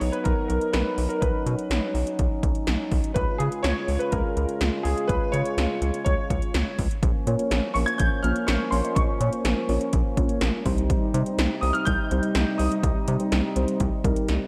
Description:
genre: synth-pop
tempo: 124 BPM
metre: 4/4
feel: straight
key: Bb dorian from 7.0 s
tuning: A4 = 441 Hz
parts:
  - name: warm grand piano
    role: melody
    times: 0.0-14.5 s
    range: G#4 to Ab6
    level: -31 LUFS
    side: equal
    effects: analog chorus, analog delay
  - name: mellow French horn section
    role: sustained chords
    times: 0.0-14.5 s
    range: C3 to E#4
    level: -32 LUFS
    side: equal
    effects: none
  - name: rubbery square bass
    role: bass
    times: 0.0-14.4 s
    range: Bb1 to C#3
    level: -28 LUFS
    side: equal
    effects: none
  - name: 80s electronic pad drums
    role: drums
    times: 0.0-14.4 s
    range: hi-hat, kick drum, snare drum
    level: -29 LUFS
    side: equal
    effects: none
  - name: muted felt-like synth keys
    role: accompaniment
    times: 7.3-14.2 s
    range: G3 to Eb5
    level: -30 LUFS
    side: equal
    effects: chorus, phaser
room: moderate lush hall reverb, RT60 1.9 s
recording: dreamy mix soaked in reverb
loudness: -24 LUFS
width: mono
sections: 0.0-7.0 A section; 7.0-14.5 B section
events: drum fill 14.3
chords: 0.0 B; 3.2 C#; 7.0 Bbm; 10.7 Cm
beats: 0.25 0.74 | 1.22 1.71 2.19 2.67 | 3.16 3.64 4.12 4.61 | 5.09 5.58 6.06 6.54 | 7.03 7.51 8.00 8.48 | 8.96 9.45 9.93 10.41 | 10.90 11.38 11.87 12.35 | 12.83 13.32 13.80 14.29

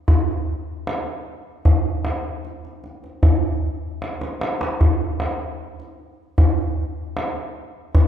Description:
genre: persian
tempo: free time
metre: none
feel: none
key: none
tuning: none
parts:
  - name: tombak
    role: percussion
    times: 0.1-8.1 s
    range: none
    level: -19 LUFS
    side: equal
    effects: none
room: moderate scoring stage reverb, RT60 1.9 s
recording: dark, warm production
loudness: -20 LUFS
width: side -9 dB against mid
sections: 0.0-4.8 A section; 4.8-8.1 A section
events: drum fill 4.0-4.8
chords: none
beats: free time

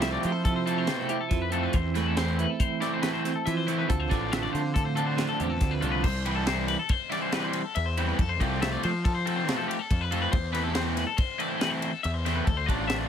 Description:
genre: math rock and midwest emo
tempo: 140 BPM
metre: 5/4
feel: straight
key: C major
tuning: A4 = 440 Hz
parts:
  - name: clean electric guitar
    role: accompaniment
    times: 0.0-6.0 s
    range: A2 to A4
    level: -31 LUFS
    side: right 9 dB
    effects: tremolo
  - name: twangy electric guitar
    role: arpeggios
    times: 0.0-13.1 s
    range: G4 to E5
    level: -32 LUFS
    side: left 7 dB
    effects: lush chorus
  - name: crunchy overdriven guitar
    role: riff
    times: 0.0-13.1 s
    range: D3 to F4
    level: -30 LUFS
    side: equal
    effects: none
  - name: fuzz picked electric bass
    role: bass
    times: 0.0-13.0 s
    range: A1 to F3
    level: -30 LUFS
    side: equal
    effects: overdrive
  - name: crisp fusion drum kit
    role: drums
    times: 0.0-13.0 s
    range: crash cymbal, hi-hat, kick drum, ride cymbal, snare drum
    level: -30 LUFS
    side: equal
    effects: none
room: light reverb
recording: none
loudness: -25 LUFS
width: side -8 dB against mid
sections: 0.0-6.0 A section; 6.0-13.1 B section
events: none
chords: 0.0 Fmaj7; 1.7 Amadd9/E; 3.9 Dm7; 6.0 C6; 8.2 F; 10.3 Amadd9/E; 12.5 Dm7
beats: 0.02 0.45 0.88 1.31 | 1.74 2.17 2.60 3.03 3.46 | 3.89 4.32 4.75 5.18 5.61 | 6.04 6.47 6.90 7.33 7.76 | 8.19 8.62 9.04 9.47 9.90 | 10.33 10.76 11.19 11.62 12.05 | 12.47 12.90

